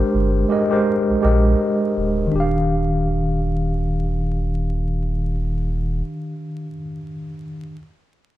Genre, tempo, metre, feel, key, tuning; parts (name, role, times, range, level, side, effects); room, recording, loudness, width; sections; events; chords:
lo-fi hip hop; 82 BPM; 4/4; swing 60% on 16ths; Eb major; A4 = 440 Hz
tine electric piano; accompaniment; 0.0-7.8 s; Eb3 to F5; -21 LUFS; equal; medium stereo tremolo, low-pass filter
sub bass with octave; bass; 0.0-6.0 s; D1 to Bb1; -21 LUFS; equal
moderate studio reverb, RT60 0.6 s; vinyl crackle; -18 LUFS; side -14 dB against mid
0.0-2.3 A section; 2.3-5.3 B section
0.0 Abmaj9; 2.3 Ebmaj9